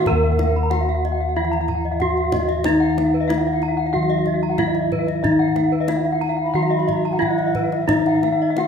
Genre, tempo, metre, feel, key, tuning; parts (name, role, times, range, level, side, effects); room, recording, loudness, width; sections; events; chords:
Balinese gamelan; 93 BPM; 4/4; straight; Eb pelog; A4 = 444 Hz
gamelan-type bronze metallophone; melody; 0.0-8.7 s; Eb4 to Bb4-30c; -23 LUFS; right 4 dB
gamelan-type bronze metallophone; accompaniment; 0.0-8.7 s; Eb3 to Bb3-30c; -28 LUFS; left 2 dB
gamelan-type bronze metallophone; arpeggios; 0.0-8.5 s; Cb5-20c to Cb6-20c; -27 LUFS; right 8 dB
gamelan-type bossed gongs; bass; 0.0-8.7 s; Eb2 to Bb4-30c; -21 LUFS; left 3 dB
gamelan-type bronze metallophone; arpeggios; 0.1-8.7 s; Eb5 to Bb5-30c; -25 LUFS; left 6 dB
kendang; percussion; 0.1-8.7 s; -29 LUFS; left 1 dB
breathy reedy bansuri; second line; 6.4-8.7 s; Fb5+21c to Cb6; -28 LUFS; left 3 dB
moderate scoring stage reverb, RT60 1.7 s; -17 LUFS; side -6 dB against mid
0.1-8.7 A section